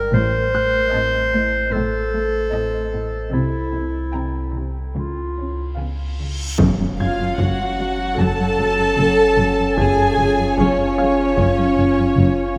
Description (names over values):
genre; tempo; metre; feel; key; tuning
cinematic, suspense film score; 75 BPM; 4/4; straight; F# harmonic minor from 6.6 s; A4 = 440 Hz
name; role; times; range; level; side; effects
clear clarinet; second line; 0.0-5.7 s; E4 to C5; -24 LUFS; equal; none
pure sine sub bass; drone; 0.0-12.6 s; F#1 to C#2; -30 LUFS; equal; subtle chorus
dark chamber cello section; riff; 0.1-12.4 s; F#2 to C#4; -31 LUFS; equal; none
dark chamber cello section; bass; 0.1-12.3 s; F#2 to C#3; -26 LUFS; equal; none
dark chamber double bass section; bass; 0.1-12.3 s; F#1 to C#2; -25 LUFS; equal; none
concert harp; texture; 0.5-12.6 s; E#5 to G#6; -35 LUFS; equal; none
warm chamber violin section; melody; 0.9-12.6 s; C#5 to Bb5; -30 LUFS; equal; none
warm chamber violin section; second line; 0.9-12.6 s; C#5 to A5; -27 LUFS; equal; none
warm chamber viola section; accompaniment; 0.9-12.6 s; B3 to A4; -23 LUFS; equal; none
reverse cymbal and impact; sound effects; 6.2-9.8 s; none; -32 LUFS; equal; none
mellow French horn section; sustained chords; 6.6-12.6 s; F#3 to E#4; -24 LUFS; equal; none
taiko ensemble; drums; 6.6-12.1 s; none; -28 LUFS; equal; none
room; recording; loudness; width
wet cathedral reverb, RT60 5.9 s; in a vast, echoing space; -19 LUFS; mono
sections
0.0-6.6 A section; 6.6-12.6 B section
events
reverse cymbal 6.2-6.6; impact 6.6-9.8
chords
0.1 Adim; 3.3 C7; 5.0 C#7; 6.6 F#m; 9.8 C#/F#